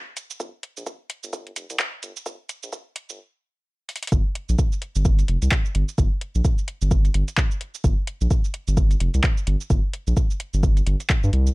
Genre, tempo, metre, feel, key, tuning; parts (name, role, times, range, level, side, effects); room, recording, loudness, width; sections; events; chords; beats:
minimal techno; 129 BPM; 4/4; swing 59% on 16ths; G minor; A4 = 441 Hz
booming analog drum machine; drums; 0.2-11.5 s; handclaps, hi-hat, shaker; -28 LUFS; equal; high-pass filter on hats, high-pass filter on perc, high-pass filter on snare
saturated sub bass; bass; 0.4-11.5 s; F1 to G2; -21 LUFS; equal; sidechain pumping, high-pass filter
electronic kick drum; drums; 0.4-11.2 s; -20 LUFS; equal; high-pass filter on kick, high-pass filter on room
little or no reverb; dark, warm production, high-pass filter; -19 LUFS; side -24 dB against mid
0.0-4.1 A section; 4.1-11.5 B section
build-up 0.0-4.1; filter sweep 0.0-4.1; drum fill 3.9; drop 4.1-11.5
| 0.40 0.86 1.33 1.80 | 2.26 2.73 3.19 3.66 | 4.12 4.59 5.05 5.52 | 5.98 6.45 6.91 7.38 | 7.84 8.31 8.77 9.24 | 9.70 10.17 10.63 11.10